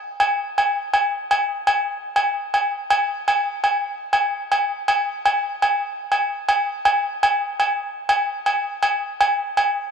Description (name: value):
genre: highlife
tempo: 121 BPM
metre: 4/4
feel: straight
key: none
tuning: none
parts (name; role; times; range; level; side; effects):
- agogo bells; percussion; 0.2-9.7 s; none; -19 LUFS; equal; none
room: moderate plate reverb, RT60 3.7 s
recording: none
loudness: -19 LUFS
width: side -7 dB against mid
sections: 0.0-9.9 A section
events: none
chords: none